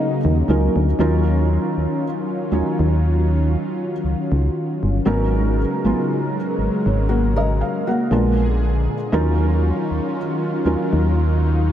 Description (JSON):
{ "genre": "R&B", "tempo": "59 BPM", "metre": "4/4", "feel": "swing 54% on 16ths", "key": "Eb minor", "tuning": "A4 = 443 Hz", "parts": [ { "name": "felt-muted upright piano", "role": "accompaniment", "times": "0.0-11.7 s", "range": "Gb3 to Gb5", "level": "-23 LUFS", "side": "right 2 dB", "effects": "analog chorus" }, { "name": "warm analog pad", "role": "sustained chords", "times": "0.0-11.7 s", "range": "Bb2 to Bb4", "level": "-23 LUFS", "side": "equal", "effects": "chorus" }, { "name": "solid FM bass", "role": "bass", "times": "0.2-11.7 s", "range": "G1 to Eb2", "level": "-18 LUFS", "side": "equal", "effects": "none" }, { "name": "nylon-string guitar", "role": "arpeggios", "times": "7.1-8.4 s", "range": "Bb3 to Bb4", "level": "-26 LUFS", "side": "left 2 dB", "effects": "diffuse ambient delay" } ], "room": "moderate huge ambient reverb, RT60 7.4 s", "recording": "dreamy mix soaked in reverb", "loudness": "-17 LUFS", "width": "side -10 dB against mid", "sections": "1.0-11.7 A section", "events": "none", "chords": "0.0 Ebm7; 1.0 Ebm9; 5.1 Abm11; 8.1 Bb7b9; 9.1 Ebm9" }